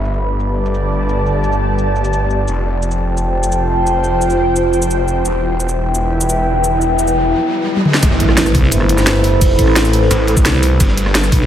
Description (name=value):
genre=dark technical drum and bass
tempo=173 BPM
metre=4/4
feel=straight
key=A minor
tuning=A4 = 437 Hz
part: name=dark analog pad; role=sustained chords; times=0.0-11.5 s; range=G3 to A5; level=-18 LUFS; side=equal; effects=chorus, phaser, vintage 12-bit sampler grit, sidechain pumping
part: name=snarling distorted saw bass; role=bass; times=0.0-11.3 s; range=E1 to A1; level=-18 LUFS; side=equal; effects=distortion, overdrive, sidechain pumping
part: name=ethereal airy pad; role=texture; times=0.0-11.5 s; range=E4 to B5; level=-22 LUFS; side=left 1 dB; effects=ensemble chorus, built-in reverb, phaser, sidechain pumping
part: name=drum and bass drum kit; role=drums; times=0.1-11.4 s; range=hi-hat, rim click, shaker, snare drum, toms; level=-18 LUFS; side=equal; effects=overdrive, low-pass filter on snare, low-pass filter on perc, low-pass filter on hats, low-pass filter on cymbals, low-pass filter on toms, low-pass filter on room
part: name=riser and impact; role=sound effects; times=6.4-9.4 s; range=none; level=-22 LUFS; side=equal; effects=none
part: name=crunchy breakbeat drum kit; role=drums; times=8.0-11.5 s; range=hi-hat, ride cymbal, snare drum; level=-28 LUFS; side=equal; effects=high-pass filter on cymbals, high-pass filter on hats, high-pass filter on snare, high-pass filter on room
part: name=electronic kick drum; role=drums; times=8.0-11.4 s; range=none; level=-13 LUFS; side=equal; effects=overdrive
part: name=growling FM bass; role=bass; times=8.5-11.5 s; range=G1 to C2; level=-14 LUFS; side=equal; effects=tube saturation
room=moderate lush hall reverb, RT60 1.9 s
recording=dreamy mix soaked in reverb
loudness=-12 LUFS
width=side -10 dB against mid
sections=0.0-8.0 A section; 8.0-11.5 B section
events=filter sweep on drum 0.0-8.0; riser 6.4-8.0; drum fill 7.8; drop 8.0-11.5; impact 8.0-9.4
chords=0.0 G; 2.5 F; 5.3 Em; 8.0 Amadd9; 10.8 G